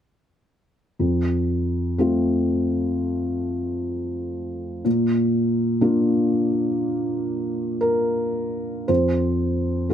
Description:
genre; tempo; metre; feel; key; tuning
neoclassical minimalist piano; 54-64 BPM; 4/4; rubato; F major; A4 = 440 Hz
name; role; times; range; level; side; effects
felt-muted upright piano; solo; 1.0-9.9 s; F2 to C5; -20 LUFS; equal; none
room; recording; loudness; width
little or no reverb; close, detailed microphones; -20 LUFS; side -9 dB against mid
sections
1.0-8.9 A section; 8.9-9.9 B section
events
none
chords
1.0 F; 4.9 Bb; 8.9 F5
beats
| 0.99 1.98 2.96 3.91 | 4.85 5.82 6.80 7.82 | 8.89 9.90

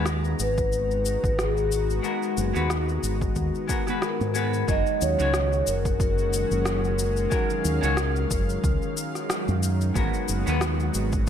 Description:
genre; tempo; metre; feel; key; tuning
sunset chillout; 91 BPM; 4/4; swing 56% on 16ths; F# major; A4 = 440 Hz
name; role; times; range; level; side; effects
vintage hollow-body jazz guitar; accompaniment; 0.0-10.6 s; G#3 to C#5; -30 LUFS; left 1 dB; auto-pan, vintage 12-bit sampler grit, digital delay
lush unison pad; sustained chords; 0.0-11.3 s; D#3 to A#5; -30 LUFS; equal; chorus
fingered electric bass with an envelope filter; bass; 0.0-11.3 s; F#1 to G#2; -26 LUFS; equal; none
electronic rim click and shaker; drums; 0.1-11.3 s; none; -31 LUFS; left 1 dB; none
vibraphone with soft mallets; melody; 0.4-8.9 s; F#4 to D#5; -28 LUFS; left 2 dB; tape echo
electronic kick drum; drums; 0.6-11.2 s; none; -27 LUFS; equal; overdrive
room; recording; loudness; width
light reverb; none; -22 LUFS; side -9 dB against mid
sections
0.0-4.7 A section; 4.7-11.3 B section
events
none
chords
0.0 G#m9; 4.7 F#69; 10.0 G#m9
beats
0.07 0.73 1.39 | 2.05 2.71 3.37 4.03 | 4.68 5.34 6.00 6.66 | 7.32 7.98 8.64 9.30 | 9.96 10.62 11.28

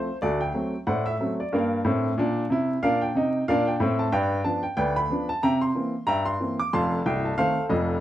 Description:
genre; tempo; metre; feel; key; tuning
ragtime piano; 92 BPM; 2/4; swing 58% on 16ths; Bb major; A4 = 440 Hz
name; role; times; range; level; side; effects
warm upright piano; solo; 0.0-8.0 s; C1 to D6; -22 LUFS; equal; none
room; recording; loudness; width
moderate small room reverb, RT60 0.5 s; vinyl crackle; -22 LUFS; side -13 dB against mid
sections
0.0-8.0 A section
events
none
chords
0.2 D7; 1.5 Gm; 2.8 Bb; 4.1 G7; 5.4 C7; 6.7 F7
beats
| 0.22 0.87 | 1.52 2.17 | 2.82 3.47 | 4.12 4.77 | 5.42 6.07 | 6.72 7.37

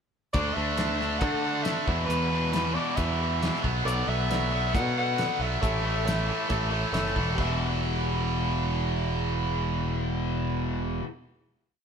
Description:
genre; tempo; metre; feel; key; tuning
classic rock; 137 BPM; 4/4; straight; E minor; A4 = 439 Hz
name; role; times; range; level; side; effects
raspy soprano saxophone; melody; 0.3-6.9 s; B4 to F#5; -32 LUFS; left 1 dB; digital delay
biting overdriven guitar; riff; 0.3-11.0 s; E2 to D4; -32 LUFS; right 8 dB; none
tight distorted guitar; riff; 0.3-11.0 s; E2 to D4; -31 LUFS; left 4 dB; distortion
modern bright picked electric bass; bass; 0.3-11.0 s; E1 to D3; -30 LUFS; equal; none
cloth-damped thuddy drum kit; drums; 0.3-7.5 s; crash cymbal, hi-hat, kick drum, snare drum; -32 LUFS; equal; none
barky reed electric piano; accompaniment; 3.8-11.0 s; G4 to E5; -38 LUFS; right 3 dB; overdrive, fast tremolo
room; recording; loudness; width
moderate stone room reverb, RT60 1.0 s; band playing live in one room; -25 LUFS; side -7 dB against mid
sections
0.3-7.4 pre-chorus; 7.4-10.8 final chord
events
none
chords
0.3 Dadd9; 1.9 E5; 3.6 Bm7; 5.6 A; 7.4 Em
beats
| 0.34 0.78 1.22 1.66 | 2.09 2.53 2.98 3.42 | 3.86 4.30 4.74 5.18 | 5.62 6.06 6.50 6.94 | 7.38 7.81 8.24 8.68 | 9.11 9.54 9.97 10.40

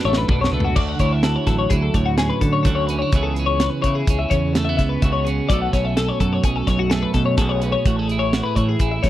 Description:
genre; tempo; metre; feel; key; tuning
math rock and midwest emo; 127 BPM; 5/4; straight; unclear; A4 = 441 Hz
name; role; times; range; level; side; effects
twelve-string electric guitar; accompaniment; 0.0-9.1 s; F#2 to B4; -23 LUFS; right 5 dB; none
twelve-string electric guitar; arpeggios; 0.0-9.1 s; F#4 to F#5; -23 LUFS; left 8 dB; analog chorus
growling fingered electric bass; bass; 0.0-9.1 s; A1 to D3; -23 LUFS; equal; overdrive
modern studio drum kit; drums; 0.1-9.1 s; crash cymbal, hi-hat, kick drum, snare drum, toms; -20 LUFS; equal; none
room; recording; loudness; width
little or no reverb; dry, close 1970s-style studio recording; -17 LUFS; side -13 dB against mid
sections
0.8-9.1 A section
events
drum fill 0.0-0.8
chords
0.0 Bm7; 0.8 Dmaj9; 3.1 Amaj9/C#; 5.5 B7sus2; 7.9 Amaj7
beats
0.29 | 0.76 1.23 1.71 2.18 2.65 | 3.13 3.60 4.07 4.55 5.02 | 5.49 5.97 6.44 6.91 7.38 | 7.85 8.32 8.80

